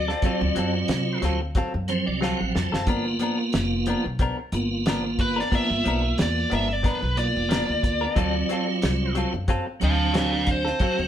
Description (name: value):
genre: straight-eighth soul blues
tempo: 91 BPM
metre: 4/4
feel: swing 56% on 16ths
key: unclear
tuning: A4 = 442 Hz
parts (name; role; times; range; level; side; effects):
- dark smooth lead guitar; melody; 0.0-1.2, 5.2-11.1 s; B4 to A5; -27 LUFS; equal; overdrive
- tonewheel organ; accompaniment; 0.0-11.1 s; E#3 to A5; -26 LUFS; right 2 dB; chorus vibrato, slow rotary speaker
- upright bass; bass; 0.0-11.1 s; F1 to C3; -28 LUFS; equal; none
- direct-recorded clean electric guitar; stabs; 0.1-11.0 s; F3 to A#4; -29 LUFS; left 3 dB; none
- cloth-damped thuddy drum kit; drums; 0.1-11.0 s; hi-hat, kick drum, snare drum; -26 LUFS; equal; none
room: moderate studio reverb, RT60 0.6 s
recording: band playing live in one room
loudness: -21 LUFS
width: side -10 dB against mid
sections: 0.0-11.1 A section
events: tonewheel organ fill 1.6-2.9; drum fill 2.2-2.9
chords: 0.0 D7#9; 2.9 G7#9; 8.2 D7#9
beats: | 0.23 0.89 1.55 2.21 | 2.88 3.54 4.20 4.86 | 5.52 6.18 6.84 7.50 | 8.16 8.82 9.48 10.15 | 10.81